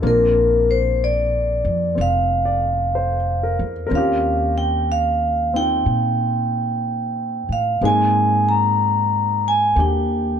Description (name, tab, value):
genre	jazz ballad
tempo	62 BPM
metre	4/4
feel	swing 66% on 8ths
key	unclear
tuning	A4 = 440 Hz
part	warm grand piano	accompaniment	0.0-10.4 s	Ab3 to D5	-26 LUFS	left 4 dB	none
part	upright bass	bass	0.0-10.4 s	F1 to Bb2	-22 LUFS	right 1 dB	none
part	vibraphone with medium hard mallets	melody	0.1-10.4 s	Bb4 to Bb5	-19 LUFS	equal	none
room	little or no reverb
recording	dark, warm production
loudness	-17 LUFS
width	side -8 dB against mid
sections	0.0-10.4 A section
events	none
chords	0.0 Bbadd9; 3.9 Eb13; 7.8 Abmaj9